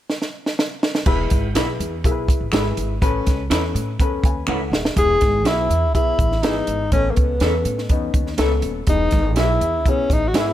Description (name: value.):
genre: uptempo 1960s-style soul.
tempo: 123 BPM.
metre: 4/4.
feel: straight.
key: E major.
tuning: A4 = 437 Hz.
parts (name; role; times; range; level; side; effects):
compact cocktail drum kit; drums; 0.1-10.5 s; crash cymbal, hi-hat, kick drum, snare drum; -20 LUFS; right 1 dB; none.
warm upright piano; accompaniment; 1.1-10.5 s; E3 to G#5; -26 LUFS; left 5 dB; none.
upright bass; bass; 1.1-10.5 s; D#1 to A2; -23 LUFS; right 1 dB; none.
electric guitar through a small old amp; stabs; 1.6-10.5 s; C#4 to E5; -27 LUFS; right 2 dB; none.
finger snap; percussion; 1.6-4.6 s; none; -32 LUFS; left 2 dB; none.
breathy tenor saxophone; melody; 5.0-10.5 s; A#3 to G#4; -20 LUFS; left 1 dB; none.
room: light reverb.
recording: none.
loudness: -17 LUFS.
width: side -12 dB against mid.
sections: 0.0-1.1 A section; 1.1-5.0 B section; 5.0-10.5 C section.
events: drum fill 0.1-1.1, 4.5-5.0.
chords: 0.0 N.C.; 1.1 E; 3.0 Aadd9; 5.0 E; 6.9 Aadd9; 8.9 E.